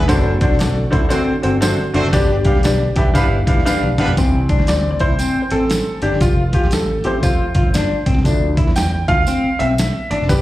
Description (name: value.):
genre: uptempo 1960s-style soul.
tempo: 118 BPM.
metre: 4/4.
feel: swing 64% on 8ths.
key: C major.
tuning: A4 = 442 Hz.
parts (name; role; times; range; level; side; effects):
warm horn section; second line; 0.0-4.1 s; G3 to C5; -28 LUFS; right 2 dB; none.
clear upright piano; accompaniment; 0.0-10.4 s; E3 to G5; -20 LUFS; equal; slapback echo.
percussive tonewheel organ; sustained chords; 0.0-4.2 s; D3 to G4; -28 LUFS; right 2 dB; none.
electric guitar through a small old amp; riff; 0.0-10.4 s; B3 to G4; -22 LUFS; left 2 dB; slapback echo.
modern bright picked electric bass; bass; 0.0-10.4 s; F1 to E2; -19 LUFS; equal; none.
dusty soul sampler-style drum kit; drums; 0.0-10.4 s; hi-hat, kick drum, snare drum, toms; -18 LUFS; equal; none.
tambourine; percussion; 0.1-10.4 s; none; -32 LUFS; right 4 dB; none.
room: light reverb.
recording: live gig heard through the venue's PA, club reverb.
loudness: -14 LUFS.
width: side -16 dB against mid.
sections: 0.0-4.2 A section; 4.2-10.4 B section.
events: drum fill 3.7-4.2; upright piano solo 4.2-10.4.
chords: 0.1 D7/F#; 2.1 G; 4.2 C; 6.2 F; 8.3 Dm.